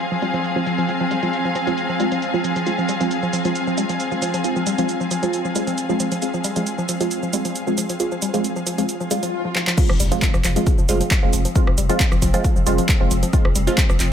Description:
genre	driving peak-time techno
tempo	135 BPM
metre	4/4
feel	straight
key	F minor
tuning	A4 = 444 Hz
part	filtered dub chord stab	stabs	0.0-13.8 s	Ab3 to F4	-24 LUFS	right 2 dB	phaser, sidechain pumping, tape echo
part	swarming drone	drone	0.0-14.1 s	F3 to C4	-28 LUFS	left 1 dB	built-in reverb, sidechain pumping
part	punchy analog drum machine	drums	0.0-14.1 s	crash cymbal, handclaps, hi-hat, rim click, shaker	-25 LUFS	right 2 dB	overdrive, sidechain pumping on hats, low-pass filter on hats, sidechain pumping on cymbals, low-pass filter on cymbals, sidechain pumping on perc, low-pass filter on perc, low-pass filter on snare
part	muted studio string section	texture	0.0-9.3 s	C4 to Ab5	-26 LUFS	left 2 dB	sidechain pumping
part	woody wave-folded pluck	riff	0.1-14.1 s	F3 to G3	-26 LUFS	equal	chorus, sidechain pumping, tape echo
part	swell and impact	sound effects	9.0-11.6 s	none	-30 LUFS	left 2 dB	none
part	electronic kick drum	drums	9.8-13.9 s	none	-17 LUFS	equal	none
part	saturated sub bass	bass	9.9-14.1 s	F1	-22 LUFS	equal	overdrive, sidechain pumping, low-pass filter
room	light reverb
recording	none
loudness	-18 LUFS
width	side -8 dB against mid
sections	0.0-9.8 A section; 9.8-14.1 B section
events	filter sweep on synth stab 0.0-9.8; swell 9.0-9.8; drum fill 9.6; drop 9.8-14.1; impact 9.8-11.6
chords	0.0 Fm

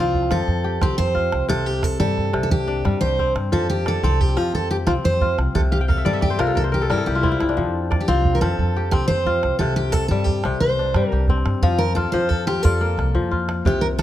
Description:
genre	west african traditional, West African string and xylophone music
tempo	118 BPM (dotted quarters)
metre	12/8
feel	straight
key	F major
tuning	A4 = 440 Hz
part	picked steel-string acoustic guitar	melody	0.0-14.0 s	E4 to C5	-22 LUFS	right 1 dB	none
part	kora	arpeggios	0.0-14.0 s	C3 to G5	-24 LUFS	left 4 dB	none
part	upright bass	bass	0.0-14.0 s	C2 to G2	-23 LUFS	equal	none
part	calabash	percussion	0.1-14.0 s	none	-24 LUFS	right 2 dB	none
room	light reverb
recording	close, detailed microphones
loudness	-18 LUFS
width	side -12 dB against mid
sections	0.0-11.6 A section; 11.6-14.0 B section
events	kora fill 5.7-7.6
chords	0.0 F; 5.5 C; 7.6 F; 9.6 C5; 11.6 F

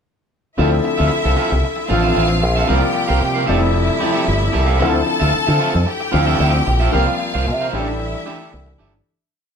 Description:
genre	disco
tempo	113 BPM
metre	4/4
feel	straight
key	D minor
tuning	A4 = 440 Hz
part	clear symphonic string section	second line	0.6-9.0 s	E4 to A5	-22 LUFS	left 1 dB	none
part	clear concert grand piano	accompaniment	0.6-9.1 s	C3 to G4	-21 LUFS	left 4 dB	none
part	electric guitar at the edge of break-up	accompaniment	0.6-9.0 s	C4 to F5	-22 LUFS	right 4 dB	none
part	fingered electric bass with an envelope filter	bass	0.6-9.0 s	F1 to D3	-18 LUFS	equal	none
room	moderate studio reverb, RT60 0.6 s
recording	band playing live in one room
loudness	-15 LUFS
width	side -7 dB against mid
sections	0.6-9.1 verse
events	fade-out 6.9-9.1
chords	0.6 Dm9; 2.7 C7sus4; 3.5 Fmaj9; 4.8 Dm9; 6.9 C7sus4; 7.7 A7sus4

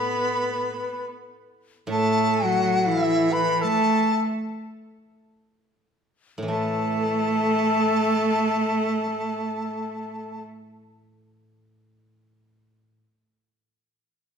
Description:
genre	chinese traditional, Chinese chamber ensemble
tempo	74-110 BPM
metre	4/4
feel	rubato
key	unclear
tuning	A4 = 440 Hz
part	mellow hollow dizi	melody	0.0-10.4 s	E5 to B5	-26 LUFS	left 2 dB	none
part	breathy bright low xiao	second line	0.0-10.4 s	E4 to B4	-27 LUFS	left 5 dB	none
part	clear cello	second line	0.0-10.4 s	E3 to B3	-26 LUFS	right 5 dB	none
part	steel-string zither	accompaniment	0.0-13.1 s	A2 to A3	-32 LUFS	right 1 dB	none
room	wet recital hall reverb, RT60 1.6 s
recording	none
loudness	-21 LUFS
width	side -7 dB against mid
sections	0.0-6.5 A section; 6.5-9.7 B section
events	slowing down 1.3-6.5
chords	none

